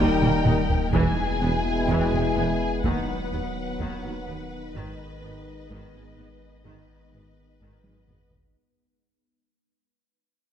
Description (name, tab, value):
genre	cinematic, hybrid orchestral and electronic film score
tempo	126 BPM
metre	4/4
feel	straight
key	G# minor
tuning	A4 = 439 Hz
part	dark symphonic violin section	melody	0.0-8.3 s	D#5 to G#5	-32 LUFS	left 3 dB	none
part	rich symphonic violin section	second line	0.0-8.3 s	G#4 to B4	-35 LUFS	left 4 dB	none
part	rich symphonic viola section	accompaniment	0.0-8.2 s	D#3 to D#4	-34 LUFS	right 1 dB	none
part	clear French horn section	sustained chords	0.0-8.3 s	A#3 to E4	-32 LUFS	left 5 dB	none
part	dark trombone section	sustained chords	0.0-8.3 s	B2 to G#3	-32 LUFS	right 2 dB	none
part	glassy FM pad	sustained chords	0.0-8.6 s	F#3 to D#5	-34 LUFS	left 2 dB	ensemble chorus, built-in reverb, phaser
part	mellow tuba	bass	0.0-8.2 s	E1 to D#2	-32 LUFS	right 3 dB	none
part	punchy sub bass	bass	0.0-8.6 s	D#1 to G#1	-35 LUFS	equal	none
part	rich symphonic cello section	bass	0.0-8.2 s	D#2 to G#2	-32 LUFS	right 2 dB	none
part	rich symphonic double bass section	bass	0.0-8.2 s	E1 to D#2	-31 LUFS	right 2 dB	none
part	taiko ensemble	drums	0.2-8.5 s	none	-27 LUFS	equal	none
room	moderate scoring stage reverb, RT60 2.1 s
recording	dark, warm production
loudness	-22 LUFS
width	side -9 dB against mid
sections	0.0-8.6 A section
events	fade-out 0.0-8.6; drum fill 0.2-0.9, 7.8-8.6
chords	0.0 D#; 0.9 E; 2.8 B/D#; 4.7 G#m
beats	0.46 | 0.93 1.41 1.89 2.36 | 2.84 3.31 3.79 4.27 | 4.74 5.22 5.70 6.17 | 6.65 7.12 7.60 8.08